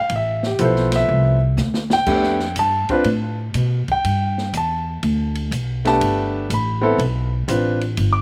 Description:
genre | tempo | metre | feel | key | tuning
modal jazz | 122 BPM | 4/4 | swing 67% on 8ths | unclear | A4 = 440 Hz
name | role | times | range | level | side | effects
clear grand piano | accompaniment | 0.0-8.2 s | F3 to D6 | -21 LUFS | equal | none
upright bass | bass | 0.1-8.2 s | G1 to B2 | -23 LUFS | equal | none
open jazz drum kit | drums | 0.1-8.1 s | crash cymbal, hi-hat, kick drum, ride cymbal, snare drum | -31 LUFS | equal | none
room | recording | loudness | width
little or no reverb | recorded outdoors, with no room sound | -20 LUFS | mono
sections
0.0-8.2 A section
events
drum fill 1.6-2.1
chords
0.0 F69; 2.1 Gadd9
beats
| 0.10 0.59 1.09 1.58 | 2.07 2.56 3.06 3.55 | 4.04 4.54 5.03 5.52 | 6.01 6.51 7.00 7.49 | 7.99

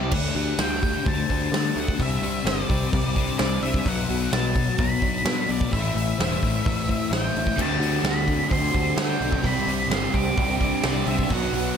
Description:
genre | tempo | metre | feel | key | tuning
rock, shoegaze and dream pop | 129 BPM | 4/4 | straight | D mixolydian | A4 = 441 Hz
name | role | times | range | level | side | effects
octave-fuzz lead guitar | melody | 0.0-11.8 s | D5 to D6 | -29 LUFS | equal | distortion, analog delay
picked twelve-string acoustic guitar | arpeggios | 0.0-11.8 s | E3 to A4 | -34 LUFS | right 6 dB | lush chorus, analog delay
overdriven semi-hollow guitar | riff | 0.0-0.1, 7.6-11.8 s | B2 to G4 | -28 LUFS | right 12 dB | reverse reverb
thick fuzz guitar | riff | 0.0-11.8 s | A2 to D4 | -27 LUFS | left 10 dB | distortion, ensemble chorus
picked electric bass | bass | 0.0-11.7 s | E1 to D3 | -28 LUFS | right 1 dB | none
big rock drum kit | drums | 0.1-11.6 s | crash cymbal, hi-hat, kick drum, snare drum | -26 LUFS | right 1 dB | none
room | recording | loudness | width
small room ambience | none | -21 LUFS | side -7 dB against mid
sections
0.1-11.8 A section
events
none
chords
0.1 D7sus4; 2.0 Csus2; 3.9 Bm; 5.7 Am; 7.6 D7sus4; 9.4 Csus2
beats
| 0.12 0.58 1.05 1.52 | 1.99 2.46 2.92 3.39 | 3.85 4.32 4.79 5.25 | 5.71 6.18 6.64 7.11 | 7.57 8.04 8.50 8.97 | 9.43 9.90 10.36 10.83 | 11.29 11.76

